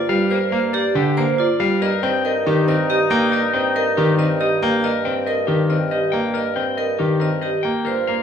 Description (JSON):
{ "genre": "classical, minimalist pattern music", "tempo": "278 BPM (eighths)", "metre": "7/8", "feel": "straight", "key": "unclear", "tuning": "A4 = 440 Hz", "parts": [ { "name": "electric guitar at the edge of break-up", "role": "melody", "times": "0.0-8.2 s", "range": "G4 to G5", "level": "-23 LUFS", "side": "left 9 dB", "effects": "none" }, { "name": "vibraphone with hard mallets", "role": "arpeggios", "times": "0.0-8.1 s", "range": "F4 to Eb5", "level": "-23 LUFS", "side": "right 6 dB", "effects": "none" }, { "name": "mellow bassoon", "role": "bass", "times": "0.0-8.2 s", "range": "G2", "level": "-27 LUFS", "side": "right 1 dB", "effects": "none" }, { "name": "clear concert grand piano", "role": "accompaniment", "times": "0.1-8.2 s", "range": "D3 to C4", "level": "-21 LUFS", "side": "equal", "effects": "none" }, { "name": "mellow oboe", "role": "second line", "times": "1.8-4.6, 7.9-8.2 s", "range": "Eb4 to F4", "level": "-25 LUFS", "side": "left 2 dB", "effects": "none" } ], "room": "wet recital hall reverb, RT60 1.4 s", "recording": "none", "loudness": "-16 LUFS", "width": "side -8 dB against mid", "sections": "0.0-8.2 A section", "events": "none", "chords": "0.0 Gm7; 1.8 Eb/G" }